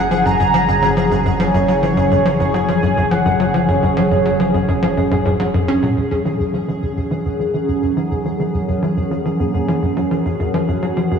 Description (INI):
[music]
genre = ambient, sequencer-driven space music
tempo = 105 BPM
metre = 4/4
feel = straight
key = F# major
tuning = A4 = 440 Hz
[part]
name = mellow horn-like synth lead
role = melody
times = 0.0-11.2 s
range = A#3 to A#5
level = -21 LUFS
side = right 1 dB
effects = lush chorus, tape echo
[part]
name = phased analog pad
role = sustained chords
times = 0.0-11.2 s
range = F#3 to G#5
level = -20 LUFS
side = right 1 dB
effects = phaser, chorus
[part]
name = tight sequencer bass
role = riff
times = 0.0-11.2 s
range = F#2 to C#4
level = -19 LUFS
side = left 1 dB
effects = lush chorus, tape echo
[part]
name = analog drone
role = bass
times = 0.0-5.9 s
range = F#1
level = -24 LUFS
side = equal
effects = chorus
[part]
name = pulsing gated texture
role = texture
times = 0.0-11.2 s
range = G#4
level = -27 LUFS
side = left 1 dB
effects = chorus, built-in reverb
[sound]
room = wet cathedral reverb, RT60 6.3 s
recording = in a vast, echoing space, studio ambience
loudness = -15 LUFS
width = side -7 dB against mid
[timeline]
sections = 0.0-6.0 A section; 6.0-11.2 B section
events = none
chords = 0.0 F#5; 6.0 F#